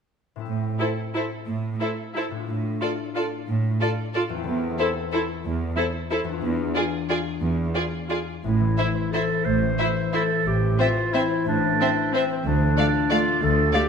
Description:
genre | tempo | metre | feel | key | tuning
classical, orchestral ballroom waltz | 181 BPM | 3/4 | uneven beats, rubato | A minor | A4 = 440 Hz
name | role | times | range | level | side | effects
concert harp | arpeggios | 0.4-13.9 s | E2 to F5 | -28 LUFS | left 9 dB | none
rich symphonic cello section | bass | 0.5-13.7 s | D2 to A2 | -28 LUFS | right 4 dB | none
rich symphonic violin section | melody | 0.8-13.8 s | C5 to F5 | -32 LUFS | left 4 dB | none
rich symphonic violin section | second line | 0.8-13.8 s | G#4 to D5 | -30 LUFS | left 2 dB | none
clear symphonic viola section | accompaniment | 0.8-13.8 s | A3 to F4 | -29 LUFS | right 2 dB | none
clear clarinet | second line | 8.4-13.9 s | C4 to C5 | -24 LUFS | right 1 dB | none
rich symphonic double bass section | bass | 8.4-13.7 s | A1 to D2 | -28 LUFS | right 4 dB | none
room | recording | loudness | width
moderate scoring stage reverb, RT60 1.5 s | none | -21 LUFS | side -6 dB against mid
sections
0.5-8.4 A section; 8.4-13.9 B section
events
none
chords
0.5 Am; 2.5 Dm/A; 6.4 E7b9; 8.4 Am; 12.5 Dm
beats
| 0.47 0.80 1.15 | 1.48 1.81 2.16 | 2.48 2.81 3.16 | 3.48 3.81 4.15 | 4.47 4.79 5.13 | 5.45 5.77 6.11 | 6.42 6.75 7.09 | 7.41 7.74 8.10 | 8.44 8.78 9.13 | 9.46 9.79 10.14 | 10.46 10.80 11.14 | 11.47 11.80 12.14 | 12.46 12.78 13.12 | 13.43 13.75

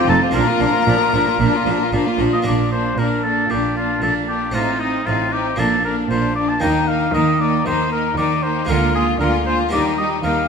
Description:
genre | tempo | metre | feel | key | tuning
classical, baroque-style concerto movement with solo episodes | 115 BPM | 4/4 | straight | Bb major | A4 = 440 Hz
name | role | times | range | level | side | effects
rich chamber violin section | melody | 0.0-10.5 s | F5 to Bb5 | -29 LUFS | left 8 dB | none
warm oboe | melody | 0.0-10.5 s | Eb4 to A5 | -21 LUFS | left 1 dB | none
clear chamber violin section | second line | 0.0-10.5 s | D4 to F4 | -22 LUFS | left 5 dB | none
harpsichord | accompaniment | 0.0-10.5 s | F2 to G4 | -25 LUFS | right 1 dB | none
rich chamber viola section | accompaniment | 0.0-10.5 s | F3 to C4 | -25 LUFS | right 4 dB | none
clear chamber cello section | bass | 0.1-10.5 s | F2 to Eb3 | -26 LUFS | right 3 dB | none
clear chamber double bass section | bass | 0.1-10.5 s | F1 to Eb2 | -24 LUFS | right 5 dB | none
room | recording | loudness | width
moderate concert hall reverb, RT60 2.2 s | minimal, uncompressed stereo recording | -16 LUFS | side -6 dB against mid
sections
0.0-2.5 A section; 2.5-10.5 B section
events
none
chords
0.3 Bb; 4.5 F7/A; 5.6 Bb; 6.6 Eb; 8.7 Bb7/D; 9.7 Eb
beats
| 0.34 0.87 1.40 1.92 | 2.45 2.98 3.50 4.02 | 4.54 5.06 5.58 6.10 | 6.62 7.14 7.66 8.17 | 8.69 9.20 9.72 10.23

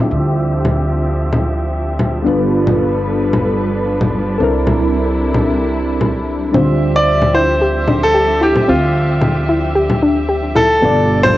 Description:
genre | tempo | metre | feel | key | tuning
sunset chillout | 112 BPM | 4/4 | swing 53% on 16ths | D minor | A4 = 442 Hz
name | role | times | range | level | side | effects
soft electric-piano-like synth keys | accompaniment | 0.0-11.4 s | B2 to E5 | -19 LUFS | moving between left 4 dB and right 4 dB | chorus, phaser, auto-pan, analog delay, plate reverb
muted studio string section | sustained chords | 0.0-11.4 s | C3 to E5 | -21 LUFS | equal | low-pass filter, plate reverb
upright bass | bass | 0.0-11.4 s | G1 to D2 | -19 LUFS | equal | none
congas | drums | 0.6-11.3 s | none | -18 LUFS | left 1 dB | overdrive, cassette tape
soft round pluck | arpeggios | 6.5-11.1 s | B3 to G4 | -18 LUFS | left 1 dB | chorus, analog delay, plate reverb
bright grand piano | melody | 7.0-11.4 s | F4 to D5 | -14 LUFS | equal | cassette tape, plate reverb
room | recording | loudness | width
moderate small room reverb, RT60 0.6 s | home recording on cassette, nothing above 7.8 kHz | -12 LUFS | side -15 dB against mid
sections
0.0-11.4 A section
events
filter sweep on string section 0.0-11.4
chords
0.0 Dm11; 2.3 G7; 4.4 C13; 6.5 Dm11; 10.8 G7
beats
| 0.12 0.65 1.19 1.73 | 2.26 2.80 3.33 3.87 | 4.40 4.94 5.47 6.01 | 6.55 7.08 7.62 8.15 | 8.69 9.22 9.76 10.30 | 10.83 11.37

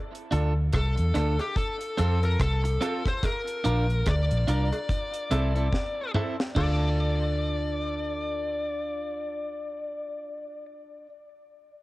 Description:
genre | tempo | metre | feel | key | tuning
roots reggae | 72 BPM | 4/4 | swing 58% on 16ths | D minor | A4 = 443 Hz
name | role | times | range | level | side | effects
deep reggae drum kit | drums | 0.1-6.8 s | crash cymbal, hi-hat, kick drum, rim click, snare drum, toms | -30 LUFS | equal | cassette tape
clean electric guitar | accompaniment | 0.3-11.1 s | C4 to Bb4 | -33 LUFS | right 3 dB | cassette tape, dub echo
clear grand piano | stabs | 0.3-11.0 s | C4 to Bb4 | -39 LUFS | left 4 dB | cassette tape
vintage muted fingered electric bass | bass | 0.3-11.0 s | Bb1 to F2 | -25 LUFS | equal | none
smooth overdriven lead guitar | melody | 0.7-10.7 s | G4 to D5 | -32 LUFS | left 2 dB | cassette tape, dub echo
cowbell | percussion | 0.7-6.9 s | none | -41 LUFS | right 2 dB | none
room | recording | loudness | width
light reverb, small room ambience | home recording on cassette | -25 LUFS | side -19 dB against mid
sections
0.0-6.6 A section; 6.6-9.9 B section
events
drum fill 5.7-6.6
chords
0.0 Dm; 1.6 F; 3.2 Bb; 4.9 Am; 6.6 Dm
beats
0.73 1.57 2.40 | 3.23 4.06 4.89 5.73 | 6.56 7.39 8.22 9.06

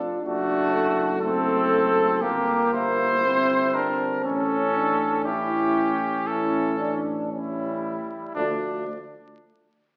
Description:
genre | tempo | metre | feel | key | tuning
classical, brass quintet | 59 BPM | 4/4 | rubato | unclear | A4 = 443 Hz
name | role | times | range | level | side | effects
clear trombone | accompaniment | 0.0-8.8 s | F3 to E4 | -32 LUFS | equal | none
mellow French horn | accompaniment | 0.0-8.8 s | A3 to F4 | -32 LUFS | equal | none
clear trumpet | melody | 0.2-8.8 s | D4 to C5 | -28 LUFS | equal | none
mellow trumpet | second line | 0.2-8.8 s | G3 to D5 | -30 LUFS | equal | none
mellow tuba | bass | 0.2-8.8 s | F#1 to D2 | -35 LUFS | equal | none
room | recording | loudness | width
wet recital hall reverb, RT60 1.4 s | heard from further back in the room, vinyl crackle, AM radio sound | -24 LUFS | mono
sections
0.0-8.3 A section; 8.3-10.0 B section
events
none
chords
0.2 D7/F#; 2.2 Gm; 4.2 A7; 8.3 Dm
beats
| 0.23 1.20 2.21 3.23 | 4.24 5.25 6.27 7.30 | 8.35

